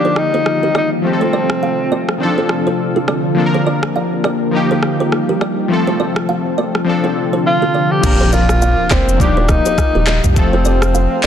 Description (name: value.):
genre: afrobeats.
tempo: 103 BPM.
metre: 4/4.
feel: swing 58% on 16ths.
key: Bb major.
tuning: A4 = 440 Hz.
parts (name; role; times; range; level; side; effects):
breathy tenor saxophone; melody; 0.0-2.2, 7.5-11.3 s; C4 to G4; -17 LUFS; equal; tape echo.
warm analog keys; accompaniment; 0.0-11.3 s; Eb3 to Bb4; -18 LUFS; left 3 dB; chorus.
glassy FM pad; sustained chords; 0.0-11.3 s; C3 to Eb6; -21 LUFS; equal; ensemble chorus, built-in reverb.
kalimba; riff; 0.0-11.3 s; F4 to F5; -22 LUFS; right 4 dB; tape echo.
afro-pop drum kit; drums; 0.2-11.3 s; crash cymbal, handclaps, kick drum, rim click, shaker, toms; -19 LUFS; equal; vintage 12-bit sampler grit, soft clipping on snare.
warm sub bass; bass; 8.0-11.3 s; Eb1 to C2; -15 LUFS; equal; none.
impact; sound effects; 8.1-10.4 s; none; -26 LUFS; equal; none.
room: light reverb, digital ambience.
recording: dense, heavily limited modern master.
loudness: -12 LUFS.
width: side -9 dB against mid.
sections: 0.0-8.0 A section; 8.0-11.3 B section.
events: impact 8.0-10.4.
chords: 0.0 Ebadd9; 1.0 F; 2.2 Dm7; 4.5 Ebadd9; 5.7 F; 6.9 Dm7; 8.0 Bb; 9.2 Ebadd9; 10.4 F.